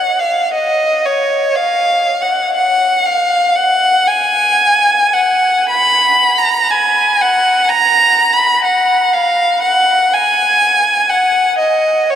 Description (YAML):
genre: classical, free, expressive piece for unaccompanied violin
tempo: 51-64 BPM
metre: 3/4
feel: rubato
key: F# major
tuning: A4 = 440 Hz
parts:
  - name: rich violin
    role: solo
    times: 0.0-12.2 s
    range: C#5 to B5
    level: -10 LUFS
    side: equal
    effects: none
room: wet cathedral reverb, RT60 7.4 s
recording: in a vast, echoing space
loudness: -10 LUFS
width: side -9 dB against mid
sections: 0.0-12.2 A section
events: none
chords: none